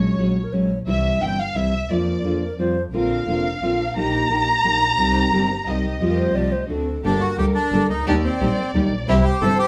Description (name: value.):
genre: tango.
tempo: 175 BPM.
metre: 3/4.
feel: rubato.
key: Bb major.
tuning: A4 = 438 Hz.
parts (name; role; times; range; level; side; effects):
dark studio violin section; second line; 0.0-9.7 s; Bb4 to Bb5; -26 LUFS; equal; none.
nylon-string guitar; accompaniment; 0.0-9.6 s; C3 to A4; -24 LUFS; equal; none.
clear double bass; bass; 0.0-9.6 s; F1 to F2; -28 LUFS; equal; none.
mellow hollow concert flute; second line; 0.2-2.8, 6.0-7.0 s; Gb4 to D5; -29 LUFS; equal; none.
warm studio string section; stabs; 2.9-9.6 s; A3 to Bb4; -31 LUFS; equal; none.
bandoneon; melody; 7.1-9.7 s; C4 to A4; -24 LUFS; equal; none.
room: wet studio reverb, RT60 0.5 s.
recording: band playing live in one room.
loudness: -20 LUFS.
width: mono.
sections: 0.0-7.0 A section; 7.0-9.7 B section.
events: violin section solo 0.0-7.0.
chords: 0.0 Gbadd9/Bb; 0.9 C; 1.9 Bb/F; 2.6 Fsus2; 2.9 Bbadd9; 4.0 Eb/Bb; 5.0 Cm; 6.0 Fadd9; 6.7 D7; 7.0 Gmadd9; 8.1 Eb; 9.1 C.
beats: 0.19 0.53 | 0.87 1.21 1.55 | 1.90 2.24 2.58 | 2.93 3.28 3.62 | 3.96 4.31 4.65 | 4.99 5.33 5.67 | 6.01 6.35 6.69 | 7.04 7.38 7.72 | 8.07 8.41 8.75 | 9.09 9.43.